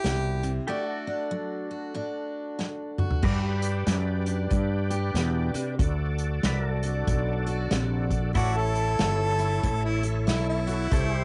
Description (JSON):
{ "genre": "honky-tonk and classic country", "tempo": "94 BPM", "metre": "4/4", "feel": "swing 61% on 8ths", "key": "D major", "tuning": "A4 = 440 Hz", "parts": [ { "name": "clear harmonica", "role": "second line", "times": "0.0-0.6, 8.4-11.2 s", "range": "E4 to A4", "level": "-31 LUFS", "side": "equal", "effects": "none" }, { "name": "picked steel-string acoustic guitar", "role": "accompaniment", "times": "0.0-11.2 s", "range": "G2 to A4", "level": "-36 LUFS", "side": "equal", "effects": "plate reverb" }, { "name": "pedal steel guitar", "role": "sustained chords", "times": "0.0-11.2 s", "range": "E4 to E5", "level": "-40 LUFS", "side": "equal", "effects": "lush chorus, plate reverb" }, { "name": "fretless electric bass", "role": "bass", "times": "0.0-11.2 s", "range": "G1 to G2", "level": "-29 LUFS", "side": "equal", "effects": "none" }, { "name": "unplugged drum kit", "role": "drums", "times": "0.0-11.1 s", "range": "crash cymbal, hi-hat, kick drum, snare drum, toms", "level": "-31 LUFS", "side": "equal", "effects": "cassette tape" }, { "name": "overdriven tonewheel organ", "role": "accompaniment", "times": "3.2-11.2 s", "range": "E4 to D5", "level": "-36 LUFS", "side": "equal", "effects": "slow rotary speaker, chorus vibrato, plate reverb" } ], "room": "light reverb", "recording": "home recording on cassette, nothing above 11.0 kHz", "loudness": "-27 LUFS", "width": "mono", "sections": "0.0-3.2 A section; 3.2-11.2 B section", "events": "break 0.7-3.2; drum fill 2.6-3.2", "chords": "0.0 C; 0.7 D; 3.2 G; 5.8 D; 8.4 A" }